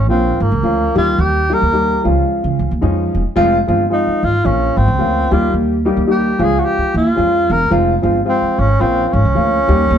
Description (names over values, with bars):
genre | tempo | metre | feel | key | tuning
uptempo 1960s-style soul | 110 BPM | 4/4 | swing 59% on 8ths | unclear | A4 = 436 Hz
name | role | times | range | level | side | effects
breathy tenor saxophone | melody | 0.0-10.0 s | Bb3 to Bb4 | -17 LUFS | equal | none
upright bass | bass | 0.0-10.0 s | Fb1 to Db3 | -16 LUFS | right 1 dB | none
warm upright piano | accompaniment | 0.1-10.0 s | F3 to G4 | -17 LUFS | left 1 dB | none
room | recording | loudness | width
moderate stone room reverb, RT60 1.0 s | band playing live in one room | -12 LUFS | side -9 dB against mid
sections
0.0-10.0 A section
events
none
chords
0.1 Bbm; 0.9 Eb; 2.0 Db; 3.4 Fm; 4.4 Bbm; 5.3 Eb; 6.4 Db; 7.7 Fm; 8.8 Bbm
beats
0.08 0.63 | 1.17 1.72 2.26 2.81 | 3.36 3.90 4.45 4.99 | 5.54 6.08 6.63 7.18 | 7.72 8.27 8.81 9.36 | 9.91